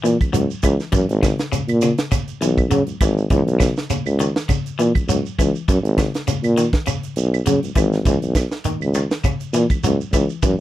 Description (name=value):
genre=afrobeat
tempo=101 BPM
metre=4/4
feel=swing 55% on 16ths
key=C# dorian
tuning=A4 = 442 Hz
part: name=twangy electric guitar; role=arpeggios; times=0.0-10.6 s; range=C#3 to F#3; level=-25 LUFS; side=left 6 dB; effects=none
part: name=clear tuba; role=bass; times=0.0-10.6 s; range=G#1 to C#3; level=-18 LUFS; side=equal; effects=none
part: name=tight funk drum kit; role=drums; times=0.1-10.6 s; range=hi-hat, kick drum, snare drum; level=-20 LUFS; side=right 1 dB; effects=none
part: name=shekere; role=percussion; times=0.1-10.6 s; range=none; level=-26 LUFS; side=right 5 dB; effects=none
part: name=claves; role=percussion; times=0.2-10.3 s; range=none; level=-32 LUFS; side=right 22 dB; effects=none
room=little or no reverb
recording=dry, close 1970s-style studio recording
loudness=-17 LUFS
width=side -14 dB against mid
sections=0.0-10.6 A section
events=none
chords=0.0 C#m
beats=0.34 | 0.94 1.53 2.12 2.71 | 3.31 3.90 4.49 5.09 | 5.68 6.27 6.87 7.46 | 8.06 8.65 9.24 9.84 | 10.43